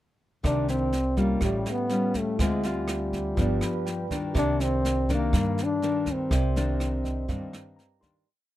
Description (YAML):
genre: bossa nova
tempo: 122 BPM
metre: 4/4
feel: straight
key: C minor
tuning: A4 = 440 Hz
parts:
  - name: nylon-string guitar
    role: accompaniment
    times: 0.4-8.2 s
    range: G2 to F4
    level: -30 LUFS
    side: left 1 dB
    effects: none
  - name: tine electric piano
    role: accompaniment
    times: 0.4-8.3 s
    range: Eb4 to C6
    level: -36 LUFS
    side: right 4 dB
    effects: medium stereo tremolo
  - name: upright bass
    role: bass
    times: 0.4-7.5 s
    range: G1 to G2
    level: -28 LUFS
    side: right 1 dB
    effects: none
  - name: jazz brush drum kit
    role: drums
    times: 0.4-8.1 s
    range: kick drum, rim click, snare drum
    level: -31 LUFS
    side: right 1 dB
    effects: none
  - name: mellow trombone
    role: melody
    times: 0.5-8.1 s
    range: G3 to D4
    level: -28 LUFS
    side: left 2 dB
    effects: none
room: little or no reverb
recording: none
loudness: -24 LUFS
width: side -14 dB against mid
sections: 0.4-8.3 A section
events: tine electric piano fill 3.4-4.4, 6.8-8.3; fade-out 6.3-8.3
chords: 0.4 Cm9; 1.4 A7b13; 2.4 Dm7b5; 3.4 G7; 4.4 Cm9